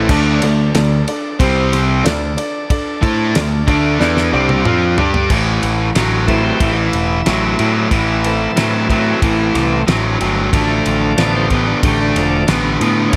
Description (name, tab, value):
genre	classic rock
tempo	92 BPM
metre	4/4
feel	straight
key	A minor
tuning	A4 = 440 Hz
part	clear grand piano	accompaniment	0.0-5.2 s	C4 to D5	-24 LUFS	equal	none
part	bright tonewheel organ	sustained chords	0.0-13.2 s	E3 to D5	-25 LUFS	equal	overdrive, stopped rotary speaker
part	distorted electric guitar	riff	0.0-13.2 s	A2 to A4	-20 LUFS	equal	overdrive
part	overdriven semi-hollow guitar	riff	0.0-13.2 s	A2 to A4	-22 LUFS	equal	none
part	growling picked electric bass	bass	0.0-13.2 s	E1 to A2	-21 LUFS	equal	overdrive
part	damped 70s drum kit	drums	0.1-13.2 s	crash cymbal, kick drum, ride cymbal, snare drum, toms	-22 LUFS	equal	none
room	light reverb, small room ambience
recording	none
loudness	-15 LUFS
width	mono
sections	0.0-5.3 A section; 5.3-13.2 B section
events	drum fill 4.0-5.3; tonewheel organ solo 5.3-13.2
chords	0.1 D5; 1.4 C5; 2.0 D5; 5.3 Am; 10.5 Dm